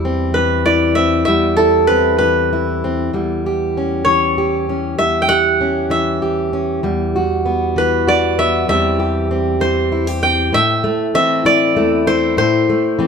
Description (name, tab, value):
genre	folk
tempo	65 BPM (dotted quarters)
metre	6/8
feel	straight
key	E minor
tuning	A4 = 440 Hz
part	koto	melody	0.0-13.1 s	G4 to G5	-16 LUFS	equal	none
part	fingerpicked plugged-in steel-string acoustic guitar	accompaniment	0.0-13.1 s	E2 to G4	-16 LUFS	equal	none
room	moderate large studio reverb, RT60 1.0 s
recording	band playing live in one room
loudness	-13 LUFS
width	side -6 dB against mid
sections	0.0-10.5 A section; 10.5-13.1 B section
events	none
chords	0.0 C/E; 3.1 Em69; 6.8 Emadd9; 8.7 C/E; 10.5 Am